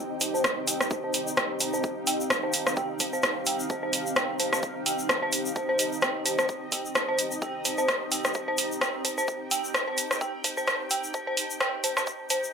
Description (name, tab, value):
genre	minimal techno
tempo	129 BPM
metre	4/4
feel	swing 56% on 16ths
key	C minor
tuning	A4 = 440 Hz
part	dark detuned synth bell	riff	0.0-12.4 s	C5 to G5	-30 LUFS	equal	chorus, tremolo, sidechain pumping, low-pass filter, dub echo
part	bubbling stepped-filter texture	texture	0.0-12.5 s	Eb4 to G5	-38 LUFS	left 1 dB	chorus, built-in reverb, sidechain pumping
part	ethereal airy pad	texture	0.0-12.5 s	C4 to G5	-34 LUFS	right 1 dB	ensemble chorus, built-in reverb, tremolo, sidechain pumping
part	house drum kit	drums	0.2-12.4 s	hi-hat, rim click	-26 LUFS	equal	high-pass filter on hats, high-pass filter on snare, high-pass filter on room
part	tube shaker	percussion	0.2-12.5 s	none	-34 LUFS	left 4 dB	none
part	electronic kick drum	drums	0.4-12.2 s	none	-36 LUFS	equal	high-pass filter on kick, high-pass filter on room
room	wet studio reverb, RT60 0.6 s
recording	high-pass filter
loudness	-25 LUFS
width	side -6 dB against mid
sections	0.0-12.5 A section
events	build-up 0.0-12.5; filter sweep on synth bell 0.0-12.5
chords	0.0 Cm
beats	0.44 0.91 1.37 | 1.84 2.30 2.77 3.23 | 3.70 4.16 4.63 5.09 | 5.56 6.02 6.49 6.95 | 7.42 7.88 8.35 8.81 | 9.28 9.74 10.21 10.68 | 11.14 11.61 12.07